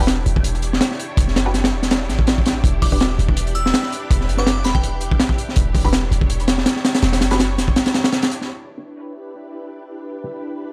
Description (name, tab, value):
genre	drum and bass, jungle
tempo	164 BPM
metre	4/4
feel	swing 55% on 16ths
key	E dorian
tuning	A4 = 440 Hz
part	soft string machine	sustained chords	0.2-10.7 s	D4 to C#5	-33 LUFS	equal	ensemble chorus, vintage 12-bit sampler grit
part	filtered dub chord stab	stabs	0.0-10.3 s	D4 to B4	-32 LUFS	equal	phaser, analog chorus, dub echo
part	warm 808-style bass	bass	0.0-7.8 s	E1 to A1	-23 LUFS	equal	tube saturation
part	crunchy breakbeat drum kit	drums	0.1-8.5 s	hi-hat, kick drum, snare drum	-20 LUFS	equal	none
part	glassy synth bell	melody	2.8-5.1 s	G5 to E6	-32 LUFS	equal	chorus, phaser, dub echo
room	small room reverb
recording	dry, gritty hardware recording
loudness	-18 LUFS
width	mono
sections	0.0-8.5 A section; 8.5-10.7 B section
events	drop 0.0-8.5; filter sweep on string machine 8.5-10.7; filter sweep on synth stab 8.5-10.7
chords	0.0 Em7